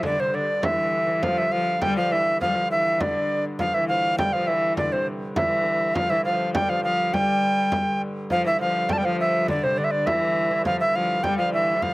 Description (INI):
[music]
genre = medieval dance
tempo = 102 BPM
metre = 2/4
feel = straight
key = unclear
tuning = A4 = 442 Hz
[part]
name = bright reedy tenor recorder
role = melody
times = 0.0-11.9 s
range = C5 to A5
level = -22 LUFS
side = equal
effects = none
[part]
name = lute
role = second line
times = 0.0-11.9 s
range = C3 to G3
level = -33 LUFS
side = right 3 dB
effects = slapback echo
[part]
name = rich viola da gamba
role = second line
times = 0.0-11.9 s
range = C3 to G3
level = -28 LUFS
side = left 2 dB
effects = none
[part]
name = dark hurdy-gurdy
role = drone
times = 0.0-11.9 s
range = G2 to D3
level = -32 LUFS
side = right 1 dB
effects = none
[part]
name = frame drum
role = percussion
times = 0.0-11.9 s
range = none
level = -29 LUFS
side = right 1 dB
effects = none
[sound]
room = little or no reverb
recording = recorded outdoors, with no room sound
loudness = -20 LUFS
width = side -19 dB against mid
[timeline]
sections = 0.0-8.3 A section; 8.3-11.9 A section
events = none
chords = none